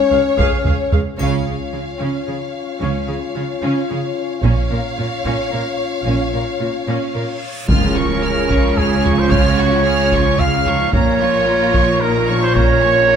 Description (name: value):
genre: cinematic, epic orchestral film score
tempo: 111 BPM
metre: 3/4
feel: straight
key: Db major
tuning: A4 = 440 Hz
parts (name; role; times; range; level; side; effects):
- warm symphonic violin section; melody; 0.0-13.2 s; Db5 to F6; -26 LUFS; left 2 dB; none
- rich symphonic violin section; second line; 0.0-13.2 s; Db4 to Db5; -27 LUFS; left 2 dB; none
- mellow French horn section; sustained chords; 0.0-13.2 s; Bb3 to F4; -22 LUFS; left 6 dB; none
- warm symphonic viola section; accompaniment; 0.1-13.2 s; F3 to F5; -25 LUFS; right 3 dB; none
- clear studio double bass section; bass; 0.1-13.2 s; Bb1 to Db2; -22 LUFS; right 4 dB; none
- clear symphonic cello section; bass; 0.1-13.2 s; Db2 to Db3; -23 LUFS; right 2 dB; none
- taiko ensemble; drums; 0.4-13.1 s; none; -19 LUFS; right 1 dB; none
- triangle; percussion; 1.2-2.2 s; none; -41 LUFS; left 2 dB; none
- reverse cymbal and impact; sound effects; 7.3-9.3 s; none; -28 LUFS; equal; none
- warm trumpet; stabs; 7.7-13.2 s; Ab4 to F5; -17 LUFS; right 2 dB; none
- timpani; percussion; 7.7-8.5 s; Db3; -22 LUFS; left 2 dB; none
room: wet recital hall reverb, RT60 1.6 s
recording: none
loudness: -14 LUFS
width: side -8 dB against mid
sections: 0.0-1.2 A section; 1.2-7.7 B section; 7.7-13.2 A section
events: band accent 1.2-1.7; reverse cymbal 7.3-7.7; impact 7.7-9.3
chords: 0.0 Db; 4.4 Bbm; 7.7 Db; 10.9 Bbm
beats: 0.11 0.66 | 1.20 1.74 2.28 | 2.82 3.36 3.90 | 4.44 4.98 5.52 | 6.06 6.60 7.14 | 7.68 8.22 8.76 | 9.30 9.84 10.38 | 10.93 11.47 12.01 | 12.55 13.09